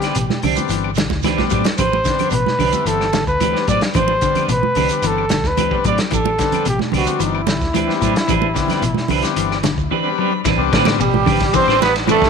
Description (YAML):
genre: afrobeat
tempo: 111 BPM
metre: 4/4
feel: straight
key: A dorian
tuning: A4 = 442 Hz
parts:
  - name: breathy trumpet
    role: melody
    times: 0.0-12.3 s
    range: E4 to D5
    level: -20 LUFS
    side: equal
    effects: none
  - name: combo organ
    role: accompaniment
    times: 0.0-12.3 s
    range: G3 to B5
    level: -25 LUFS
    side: left 12 dB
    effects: none
  - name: clean electric guitar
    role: arpeggios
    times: 0.0-12.3 s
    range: B2 to F#3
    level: -23 LUFS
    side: left 9 dB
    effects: none
  - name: clean electric guitar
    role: stabs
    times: 0.0-12.3 s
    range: C4 to B4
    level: -24 LUFS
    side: right 11 dB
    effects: tremolo
  - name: vintage drum kit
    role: drums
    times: 0.0-12.3 s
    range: hi-hat, kick drum, ride cymbal, snare drum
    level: -22 LUFS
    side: equal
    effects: none
  - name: claves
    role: percussion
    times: 0.0-12.2 s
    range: none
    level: -32 LUFS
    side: left 15 dB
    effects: none
  - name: shekere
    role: percussion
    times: 0.0-12.2 s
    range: none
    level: -30 LUFS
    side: right 10 dB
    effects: none
  - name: fingered electric bass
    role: bass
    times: 0.2-12.3 s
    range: G1 to A2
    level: -24 LUFS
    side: equal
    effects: none
  - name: congas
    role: percussion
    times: 0.2-12.2 s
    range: none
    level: -24 LUFS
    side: right 14 dB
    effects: none
  - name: raspy tenor saxophone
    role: second line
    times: 11.0-12.3 s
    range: G3 to C4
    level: -19 LUFS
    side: right 13 dB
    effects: none
room: light reverb, small room reverb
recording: 1960s-style stereo with parts hard left and right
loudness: -15 LUFS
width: side -6 dB against mid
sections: 0.0-10.5 A section; 10.5-12.3 B section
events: drum fill 1.1-1.8; transistor combo organ fill 9.6-10.5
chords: 0.0 Am11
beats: 0.15 0.70 1.24 | 1.78 2.33 2.87 3.41 | 3.95 4.50 5.04 5.58 | 6.12 6.67 7.21 7.75 | 8.29 8.84 9.38 9.92 | 10.46 11.00 11.54 12.09